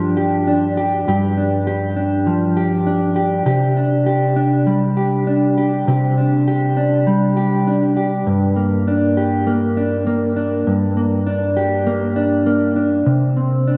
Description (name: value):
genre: dream pop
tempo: 100 BPM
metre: 4/4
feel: straight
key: G minor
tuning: A4 = 440 Hz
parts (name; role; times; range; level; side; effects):
- mellow electric guitar; solo; 0.0-13.8 s; G2 to G4; -17 LUFS; equal; lush chorus, delay
room: wet lush hall reverb, RT60 2.9 s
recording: dreamy mix soaked in reverb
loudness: -17 LUFS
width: mono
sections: 0.0-8.3 A section; 8.3-13.8 B section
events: none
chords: 0.0 G5; 3.5 Csus2; 8.3 Gm; 13.1 Csus2